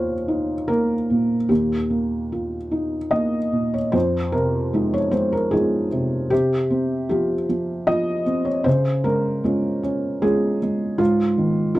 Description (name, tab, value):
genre	neoclassical minimalist piano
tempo	76 BPM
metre	3/4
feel	rubato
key	F minor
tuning	A4 = 440 Hz
part	felt-muted upright piano	solo	0.0-11.8 s	Eb2 to F5	-19 LUFS	equal	none
room	little or no reverb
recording	dry, close 1970s-style studio recording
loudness	-19 LUFS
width	side -16 dB against mid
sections	0.0-3.9 A section; 3.9-11.8 B section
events	none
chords	0.0 Ebadd9; 3.9 Fm7; 6.3 Csus4; 8.7 Db; 11.0 Ab5